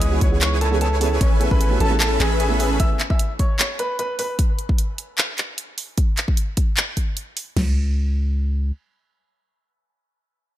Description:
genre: future bass.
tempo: 151 BPM.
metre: 4/4.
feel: half-time.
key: unclear.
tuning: A4 = 441 Hz.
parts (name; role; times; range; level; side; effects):
warm baby grand piano; melody; 0.0-4.3 s; G#4 to E6; -26 LUFS; equal; sidechain pumping, ping-pong delay.
felt-muted upright piano; accompaniment; 0.0-3.0 s; E3 to G#5; -27 LUFS; right 5 dB; sidechain pumping, dub echo.
supersaw chords; riff; 0.0-2.9 s; C#4 to B5; -26 LUFS; right 1 dB; lush chorus, sidechain pumping, dub echo.
long sustained 808-style bass; bass; 0.0-2.9, 7.6-8.7 s; A1 to C#2; -20 LUFS; equal; sidechain pumping.
pop drum kit; drums; 0.0-7.5 s; handclaps, hi-hat; -23 LUFS; equal; none.
pop drum kit; drums; 0.2-7.7 s; crash cymbal, kick drum, snare drum, toms; -20 LUFS; equal; none.
room: digital ambience.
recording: none.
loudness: -18 LUFS.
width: side -13 dB against mid.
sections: 0.0-7.6 A section; 7.6-10.6 B section.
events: drop 0.0-7.6.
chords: 0.0 C#m7; 1.2 Amaj9; 4.4 N.C..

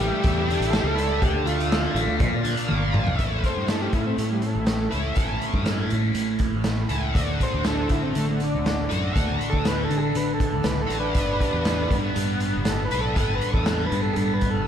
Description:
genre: psychedelic rock.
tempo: 120 BPM.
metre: 4/4.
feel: straight.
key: unclear.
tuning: A4 = 440 Hz.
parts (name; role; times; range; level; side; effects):
overdriven combo organ; melody; 0.0-14.7 s; G3 to C5; -28 LUFS; equal; diffuse ambient delay.
bright tonewheel organ; sustained chords; 0.0-3.2 s; A4 to G5; -34 LUFS; right 3 dB; slow rotary speaker, chorus vibrato.
crunchy overdriven guitar; riff; 0.0-14.7 s; A2 to B4; -26 LUFS; equal; flanger.
fingered electric bass; bass; 0.0-14.7 s; G1 to D3; -27 LUFS; equal; none.
raw garage drum kit; drums; 0.2-14.5 s; hi-hat, kick drum, snare drum, toms; -26 LUFS; equal; none.
deep rumbling drone; drone; 5.4-14.7 s; A1 to A2; -35 LUFS; right 1 dB; none.
room: moderate church reverb, RT60 2.8 s.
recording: dreamy mix soaked in reverb, lossy compression artefacts.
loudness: -21 LUFS.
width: side -9 dB against mid.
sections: 0.0-3.2 A section; 3.2-14.7 B section.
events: drum fill 2.7-3.2; transistor combo organ solo 3.2-14.7.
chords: 0.0 A7sus4; 1.2 Dm; 2.2 Bb; 3.2 A; 7.2 D; 11.2 G.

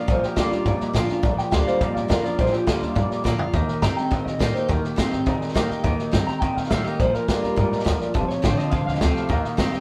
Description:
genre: rockabilly.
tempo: 208 BPM.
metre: 4/4.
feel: straight.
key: Bb major.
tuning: A4 = 439 Hz.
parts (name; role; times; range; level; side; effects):
electric guitar through a small old amp; melody; 0.0-9.7 s; F4 to Bb5; -30 LUFS; equal; none.
dark upright piano; accompaniment; 0.0-9.8 s; C5 to Bb5; -35 LUFS; equal; none.
picked steel-string acoustic guitar; accompaniment; 0.0-9.8 s; F2 to G4; -33 LUFS; equal; none.
electric guitar through a small old amp; riff; 0.0-9.8 s; F2 to C4; -29 LUFS; equal; phaser.
upright bass; bass; 0.1-9.8 s; F1 to Eb3; -29 LUFS; equal; none.
vintage drum kit; drums; 0.1-9.8 s; hi-hat, kick drum, snare drum, toms; -27 LUFS; equal; none.
room: moderate studio reverb, RT60 0.5 s.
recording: band playing live in one room.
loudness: -22 LUFS.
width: mono.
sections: 0.0-9.8 A section.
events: drum fill 3.3.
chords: 0.0 Bb; 3.5 Eb; 7.0 Bb; 8.1 F; 9.3 Eb.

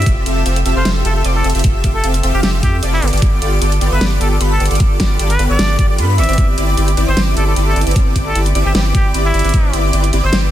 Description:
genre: future bass.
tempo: 152 BPM.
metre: 4/4.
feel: swing 53% on 16ths, half-time.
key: C major.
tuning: A4 = 440 Hz.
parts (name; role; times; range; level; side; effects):
trumpet with straight mute; melody; 0.0-10.4 s; E4 to E5; -22 LUFS; equal; sidechain pumping, tape echo.
airy dreamy lead; arpeggios; 0.0-10.5 s; B5 to F6; -25 LUFS; equal; chorus, sidechain pumping, tape echo.
supersaw chords; riff; 0.0-10.5 s; B3 to F5; -20 LUFS; equal; analog chorus, sidechain pumping, tape echo.
saturated sub bass; bass; 0.0-10.5 s; F1 to G2; -16 LUFS; equal; sidechain pumping.
dubstep drum kit; drums; 0.0-10.4 s; hi-hat, snare drum; -21 LUFS; equal; studio reverb.
electronic kick drum; drums; 0.1-9.6 s; none; -14 LUFS; equal; studio reverb.
room: digital ambience.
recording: dense, heavily limited modern master.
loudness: -12 LUFS.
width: side -12 dB against mid.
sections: 0.0-10.5 A section.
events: none.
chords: 0.1 Fmaj9; 3.0 G9; 6.2 Cmaj9/G.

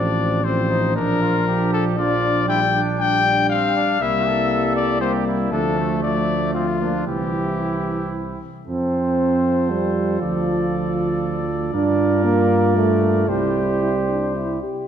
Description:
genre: classical, brass quintet.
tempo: 117 BPM.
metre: 3/4.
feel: rubato.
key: unclear.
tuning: A4 = 441 Hz.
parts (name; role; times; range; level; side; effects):
clear trumpet; melody; 0.0-14.6 s; F4 to G5; -23 LUFS; left 6 dB; none.
clear trumpet; second line; 0.0-14.6 s; A3 to Bb4; -30 LUFS; right 6 dB; none.
clear French horn; accompaniment; 0.0-14.9 s; A3 to G4; -26 LUFS; left 2 dB; none.
warm trombone; accompaniment; 0.0-14.6 s; E3 to D4; -23 LUFS; right 2 dB; none.
dark tuba; bass; 0.0-14.6 s; A1 to G2; -24 LUFS; right 2 dB; none.
room: wet concert hall reverb, RT60 2.1 s.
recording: dark, warm production.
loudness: -17 LUFS.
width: side -8 dB against mid.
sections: 0.0-8.7 A section; 8.7-14.9 B section.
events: none.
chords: 0.0 F/A; 1.0 Bb; 2.5 Gm/Bb; 4.0 C7; 5.5 Dm; 7.1 C; 8.7 F; 10.2 Dm; 11.7 Gm7; 13.3 C.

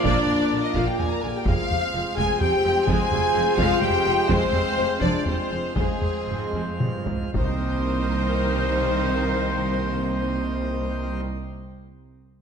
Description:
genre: cinematic, epic orchestral film score.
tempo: 108-127 BPM.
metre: 3/4.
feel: straight.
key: C minor.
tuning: A4 = 440 Hz.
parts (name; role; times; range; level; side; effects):
warm symphonic violin section; melody; 0.0-11.2 s; Ab4 to Bb5; -30 LUFS; left 2 dB; none.
clear symphonic violin section; second line; 0.0-11.2 s; Ab4 to Bb5; -33 LUFS; left 2 dB; none.
small flute group; second line; 0.0-11.2 s; Ab4 to Bb5; -32 LUFS; left 5 dB; none.
rich symphonic viola section; accompaniment; 0.0-11.2 s; D3 to Bb4; -31 LUFS; right 2 dB; none.
mellow French horn section; sustained chords; 0.0-11.2 s; Ab3 to Bb4; -28 LUFS; left 2 dB; none.
pipe organ, plenum; sustained chords; 0.0-11.2 s; Ab3 to F5; -32 LUFS; left 2 dB; none.
warm trombone section; sustained chords; 0.0-11.2 s; Eb3 to Bb3; -34 LUFS; right 3 dB; none.
warm trumpet; stabs; 0.0-11.2 s; C5 to D5; -33 LUFS; right 1 dB; none.
rich symphonic cello section; bass; 0.0-11.2 s; C2 to Bb2; -31 LUFS; right 3 dB; none.
rich symphonic double bass section; bass; 0.0-11.2 s; F1 to C2; -30 LUFS; right 3 dB; none.
taiko ensemble; drums; 0.0-8.4 s; none; -27 LUFS; equal; none.
room: moderate scoring stage reverb, RT60 1.9 s.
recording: none.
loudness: -21 LUFS.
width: side -6 dB against mid.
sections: 0.0-7.3 A section; 7.3-10.7 B section.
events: slowing down 3.6-7.3; drum fill 6.5-7.3.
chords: 0.0 Bb; 1.5 Fmadd9; 7.3 Cm7.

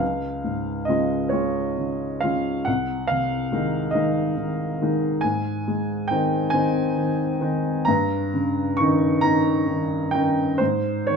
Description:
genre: classical, romantic nocturne for solo piano.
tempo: 45 BPM (dotted quarters).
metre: 6/8.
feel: uneven beats, rubato.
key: Ab major from 5.2 s.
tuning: A4 = 440 Hz.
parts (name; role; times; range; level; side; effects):
warm baby grand piano; solo; 0.0-11.2 s; C2 to Db6; -20 LUFS; equal; none.
room: moderate large studio reverb, RT60 0.9 s.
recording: dark, warm production.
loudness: -20 LUFS.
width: side -5 dB against mid.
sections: 0.0-11.2 A section.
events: none.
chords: 0.0 Db; 2.7 Ab/C; 5.2 Ab; 7.9 Eb7/G; 10.6 Ab.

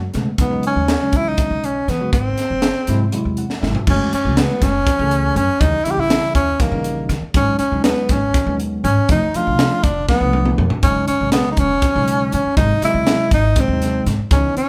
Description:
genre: electric jazz fusion.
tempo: 241 BPM (eighths).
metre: 7/8.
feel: straight.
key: unclear.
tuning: A4 = 441 Hz.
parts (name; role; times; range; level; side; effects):
breathy tenor saxophone; melody; 0.0-14.7 s; A#3 to G4; -21 LUFS; equal; none.
upright bass; bass; 0.0-14.6 s; E1 to E3; -24 LUFS; equal; none.
bell-like tine electric piano; accompaniment; 0.1-14.6 s; B2 to F#5; -26 LUFS; equal; none.
crisp fusion drum kit; drums; 0.1-14.7 s; crash cymbal, hi-hat, kick drum, snare drum, toms; -22 LUFS; equal; none.
room: moderate large studio reverb, RT60 1.0 s.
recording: band playing live in one room.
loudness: -17 LUFS.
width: mono.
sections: 0.0-3.9 A section; 3.9-14.7 B section.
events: tine electric piano fill 3.1-3.9; drum fill 3.5-3.9, 10.1-10.8.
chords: 0.4 Emaj13; 2.1 G#aug7; 3.9 F#m9; 5.6 D#7b9; 7.4 G#m7; 9.1 F7#11; 10.8 Emaj13; 12.6 G#7.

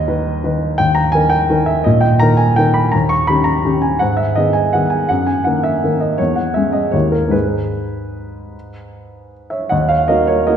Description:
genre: classical, piano waltz.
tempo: 145-177 BPM.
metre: 3/4.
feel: rubato.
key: G# minor.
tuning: A4 = 437 Hz.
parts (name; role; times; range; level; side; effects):
warm baby grand piano; solo; 0.0-10.6 s; D#2 to C#6; -13 LUFS; equal; none.
room: wet recital hall reverb, RT60 1.4 s.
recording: nothing above 10.4 kHz.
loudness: -13 LUFS.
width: side -8 dB against mid.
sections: 0.0-9.7 A section.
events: none.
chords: 0.0 G#m (rootless); 0.8 D#; 2.9 D#7; 4.0 G#m; 5.1 D#m/F#; 6.2 C#m/E; 6.9 D#7b9; 7.3 G#m; 9.7 Ebm.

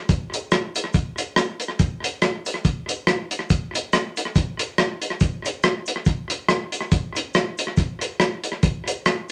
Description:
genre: ska.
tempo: 140 BPM.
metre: 4/4.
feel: swing 56% on 8ths.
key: none.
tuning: none.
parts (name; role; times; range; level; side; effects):
deep reggae drum kit; drums; 0.1-9.2 s; hi-hat, kick drum, rim click; -23 LUFS; equal; tape echo.
cabasa; percussion; 0.1-9.3 s; none; -42 LUFS; equal; none.
room: wet studio reverb, RT60 0.5 s.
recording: none.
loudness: -23 LUFS.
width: mono.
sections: 0.0-9.3 A section.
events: none.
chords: none.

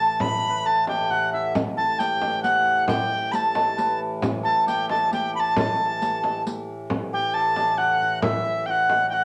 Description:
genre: medieval dance.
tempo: 135 BPM.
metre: 3/4.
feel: straight.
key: unclear.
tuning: A4 = 442 Hz.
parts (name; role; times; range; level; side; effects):
bright reedy tenor recorder; melody; 0.0-9.2 s; E5 to B5; -24 LUFS; equal; none.
hammered dulcimer; second line; 0.0-9.2 s; D4 to B4; -31 LUFS; equal; none.
hand-pumped harmonium; drone; 0.0-9.2 s; A2 to E3; -36 LUFS; equal; none.
frame drum; percussion; 0.2-9.1 s; none; -30 LUFS; equal; none.
riq; percussion; 1.6-6.7 s; none; -36 LUFS; equal; none.
room: wet studio reverb, RT60 0.6 s.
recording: none.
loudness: -23 LUFS.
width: mono.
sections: 0.0-6.9 A section; 6.9-9.2 B section.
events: none.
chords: none.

